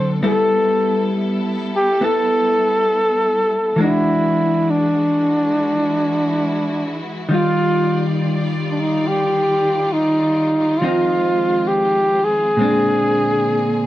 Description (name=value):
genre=jazz ballad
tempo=68 BPM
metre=4/4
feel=swing 66% on 8ths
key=unclear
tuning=A4 = 441 Hz
part: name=mellow flugelhorn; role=melody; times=0.0-13.9 s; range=D4 to C5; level=-17 LUFS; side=equal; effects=none
part: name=vintage hollow-body jazz guitar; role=accompaniment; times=0.0-13.9 s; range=Bb2 to A4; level=-22 LUFS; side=left 2 dB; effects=none
part: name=warm studio string section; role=sustained chords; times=0.0-13.9 s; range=D3 to D5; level=-24 LUFS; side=right 1 dB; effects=none
room=wet studio ambience, RT60 0.5 s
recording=cassette tape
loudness=-15 LUFS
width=side -14 dB against mid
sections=0.3-13.9 A section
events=none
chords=0.3 G69; 3.8 E9; 7.3 Ebmaj9; 10.8 Fm7; 12.6 Bb9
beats=| 0.25 1.14 2.02 2.90 | 3.78 4.66 5.55 6.43 | 7.30 8.18 9.06 9.94 | 10.82 11.70 12.58 13.47